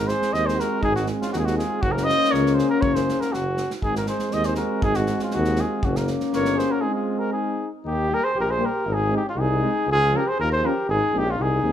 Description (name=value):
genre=balkan folk, Balkan brass band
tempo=120 BPM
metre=2/4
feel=swing 54% on 16ths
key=Ab mixolydian, Eb mixolydian from 7.9 s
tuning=A4 = 441 Hz
part: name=dark trumpet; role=melody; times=0.0-11.7 s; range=F4 to Eb5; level=-24 LUFS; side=right 1 dB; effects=none
part: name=mellow flugelhorn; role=second line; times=0.0-11.7 s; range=Db4 to C5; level=-30 LUFS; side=left 6 dB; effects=none
part: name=dark euphonium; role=accompaniment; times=0.0-11.7 s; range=Bb3 to Db4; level=-27 LUFS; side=left 5 dB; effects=none
part: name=warm trombone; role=accompaniment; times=0.0-11.7 s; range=F3 to Bb3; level=-30 LUFS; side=right 6 dB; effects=none
part: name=mellow tuba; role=bass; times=0.0-11.7 s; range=Gb1 to Eb2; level=-26 LUFS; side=equal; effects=none
part: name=natural country drum kit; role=percussion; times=0.1-6.7 s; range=kick drum, snare drum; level=-31 LUFS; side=right 1 dB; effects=none
room=moderate large studio reverb, RT60 1.3 s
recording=band playing live in one room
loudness=-20 LUFS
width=side -10 dB against mid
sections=0.0-7.9 A section; 7.9-11.7 B section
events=break 6.8-7.9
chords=0.0 Ab; 1.8 Gb; 3.8 Ab; 5.8 Gb; 6.8 Ab; 7.9 Eb; 8.9 Ab; 9.9 Db; 10.9 Ab